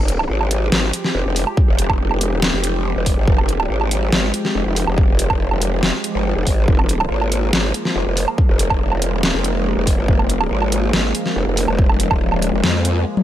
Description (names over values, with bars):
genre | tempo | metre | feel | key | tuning
heavy wobble dubstep | 141 BPM | 4/4 | half-time | F minor | A4 = 440 Hz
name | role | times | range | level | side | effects
supersaw pad | sustained chords | 0.0-13.2 s | F3 to G4 | -24 LUFS | equal | phaser, sidechain pumping, low-pass filter
growl bass | bass | 0.0-13.0 s | Eb1 to F2 | -19 LUFS | equal | chorus, overdrive
dubstep drum kit | drums | 0.1-13.2 s | hi-hat, snare drum, toms, woodblock | -20 LUFS | right 1 dB | overdrive
electronic kick drum | drums | 1.6-12.2 s | none | -16 LUFS | equal | none
room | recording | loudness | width
little or no reverb | none | -15 LUFS | side -12 dB against mid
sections
0.0-13.2 A section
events
none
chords
0.0 Fmadd9